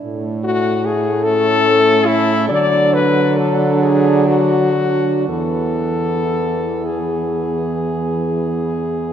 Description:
classical, lyrical piece for horn quartet; 38-50 BPM (dotted quarters); 12/8; rubato; A major; A4 = 440 Hz
mellow French horn; second line; 0.0-9.1 s; B3 to D4; -23 LUFS; right 10 dB
mellow French horn; accompaniment; 0.0-9.1 s; E3 to A3; -22 LUFS; equal
dark French horn; bass; 0.0-9.1 s; E2 to D3; -20 LUFS; right 2 dB
clear French horn; melody; 0.4-9.1 s; E4 to D5; -17 LUFS; left 4 dB
moderate church reverb, RT60 3.6 s; -14 LUFS; side -9 dB against mid
0.0-9.1 A section
0.0 A; 2.5 D; 5.3 E
| 0.04 1.25 2.50 3.81 | 5.29 6.86 8.43

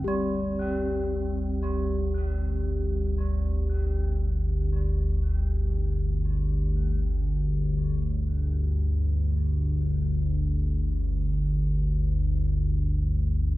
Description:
dark ambient drone; free time; A4 = 440 Hz
gamelan-type bronze metallophone; arpeggios; 0.0-6.3 s; G3 to C4; -34 LUFS; right 2 dB; tape echo
analog drone; drone; 0.0-13.6 s; G1 to D2; -25 LUFS; equal; wide subtle chorus
bronze singing bowl; texture; 0.0-13.6 s; G3 to G4; -36 LUFS; left 2 dB
small room ambience; echo-heavy mix; -24 LUFS; side -18 dB against mid
0.1-13.6 A section
fade-out on bronze metallophone 0.1-13.6; filter sweep on synth drone 0.1-13.6
0.1 G5
free time

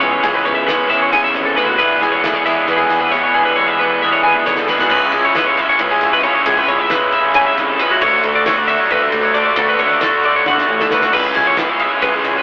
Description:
math rock and midwest emo; 270 BPM (eighths); 7/8; straight; A4 = 440 Hz
twelve-string electric guitar; accompaniment; 0.0-4.9 s; E2 to C#4; -22 LUFS; right 1 dB
twelve-string electric guitar; arpeggios; 0.0-12.4 s; F#4 to G#5; -15 LUFS; left 1 dB
raw garage guitar; riff; 0.0-12.4 s; C#3 to G#4; -15 LUFS; equal; overdrive, spring reverb
modern bright fingered electric bass; bass; 0.0-12.4 s; G#1 to D3; -26 LUFS; equal
loose indie drum kit; drums; 0.0-12.3 s; crash cymbal, kick drum, ride cymbal, snare drum, toms; -22 LUFS; equal
moderate stone room reverb, RT60 1.3 s; rough rehearsal-room recording, tube saturation, telephone sound; -11 LUFS; side -22 dB against mid
0.0-4.9 A section; 4.9-12.4 B section
drum fill 4.2-4.9, 10.5-11.1
0.0 C#m7; 1.8 E7; 4.9 C#m7; 8.0 Dmaj7; 11.1 C#m7
0.01 | 0.23 0.45 0.67 0.90 1.12 1.34 1.56 | 1.79 2.01 2.23 2.45 2.67 2.90 3.12 | 3.34 3.56 3.79 4.01 4.23 4.45 4.68 | 4.90 5.12 5.34 5.57 5.79 6.01 6.23 | 6.46 6.68 6.90 7.12 7.34 7.57 7.79 | 8.01 8.23 8.46 8.68 8.90 9.12 9.35 | 9.57 9.79 10.02 10.24 10.46 10.68 10.91 | 11.13 11.35 11.57 11.80 12.02 12.24

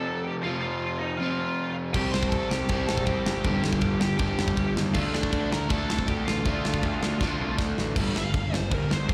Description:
punk rock; 159 BPM; 4/4; straight; A4 = 438 Hz
high-gain lead guitar; melody; 0.0-9.1 s; D4 to C6; -35 LUFS; equal; distortion, slapback echo
crunchy overdriven guitar; riff; 0.0-9.1 s; F2 to D4; -30 LUFS; equal
fuzz picked electric bass; bass; 1.9-9.1 s; F1 to Eb2; -33 LUFS; equal; overdrive
tight metal drum kit; drums; 1.9-9.1 s; crash cymbal, kick drum, ride cymbal, snare drum; -31 LUFS; equal
little or no reverb; live gig heard through the venue's PA, recital hall reverb; -27 LUFS; mono
0.0-8.0 A section; 8.0-9.1 B section
drum fill 7.2-8.0; lead electric guitar solo 8.0-9.1
0.0 F; 1.9 C5; 3.4 G5; 5.0 Dm; 8.0 G5
0.06 | 0.44 0.82 1.19 1.57 | 1.94 2.32 2.70 3.07 | 3.45 3.83 4.20 4.58 | 4.95 5.33 5.71 6.08 | 6.46 6.84 7.21 7.59 | 7.97 8.35 8.72 9.10

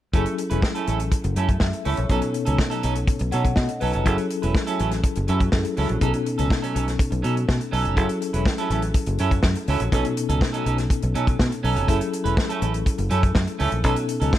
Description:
disco; 123 BPM; 4/4; straight; F# dorian; A4 = 440 Hz
clean electric guitar; accompaniment; 0.1-14.4 s; F#3 to B4; -27 LUFS; right 6 dB; lush chorus
mellow tine electric piano; accompaniment; 0.1-14.4 s; B2 to F#5; -27 LUFS; left 4 dB; fast stereo tremolo
fingered electric bass; bass; 0.1-14.3 s; E1 to B2; -24 LUFS; equal
warm soul drum kit; drums; 0.1-14.4 s; hi-hat, kick drum, snare drum; -24 LUFS; equal
studio ambience; -20 LUFS; side -13 dB against mid
0.1-14.4 A section
tine electric piano fill 3.1-4.1
0.1 F#m7; 2.1 B9; 4.1 F#m7; 6.0 B9; 8.0 F#m7; 9.9 B9; 11.9 F#m7; 13.8 B9
| 0.14 0.63 1.12 1.61 | 2.10 2.59 3.08 3.57 | 4.06 4.55 5.04 5.53 | 6.01 6.50 6.99 7.48 | 7.97 8.46 8.95 9.44 | 9.93 10.42 10.91 11.39 | 11.88 12.37 12.86 13.35 | 13.84 14.33

